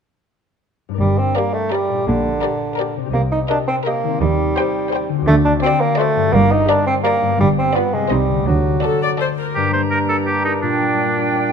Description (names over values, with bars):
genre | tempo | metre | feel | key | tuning
cinematic, playful, whimsical film cue | 169 BPM | 3/4 | straight | G minor | A4 = 440 Hz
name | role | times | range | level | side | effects
concert harp | arpeggios | 0.9-11.5 s | G2 to F5 | -22 LUFS | left 10 dB | none
mellow bassoon | accompaniment | 1.0-11.5 s | G2 to Eb4 | -19 LUFS | right 2 dB | none
warm chamber cello section | bass | 1.0-8.8 s | G2 to Eb3 | -21 LUFS | right 2 dB | none
warm studio double bass section | bass | 1.0-8.8 s | G1 to Eb2 | -21 LUFS | right 4 dB | none
warm chamber violin section | melody | 1.4-9.5 s | D5 to G5 | -26 LUFS | left 3 dB | none
warm chamber violin section | second line | 1.4-9.5 s | A4 to C5 | -28 LUFS | left 4 dB | none
warm chamber viola section | accompaniment | 1.4-9.6 s | Eb4 to D5 | -27 LUFS | left 1 dB | none
warm oboe | second line | 9.5-11.5 s | D4 to C5 | -20 LUFS | right 2 dB | none
bright small flute group | second line | 9.6-11.5 s | G5 to Bb5 | -24 LUFS | right 3 dB | none
mellow clarinet | second line | 9.6-11.5 s | D4 | -24 LUFS | right 4 dB | none
room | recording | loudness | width
moderate concert hall reverb, RT60 2.2 s | none | -15 LUFS | side -6 dB against mid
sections
1.0-9.6 A section; 9.6-11.5 A section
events
none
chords
1.0 Gm; 2.1 Gm/Bb; 3.1 Cm7; 4.2 Cm/Eb; 5.3 D7; 6.3 Gm; 7.4 G7; 8.1 Cm; 8.5 D; 9.6 Gm; 10.6 Gm/Bb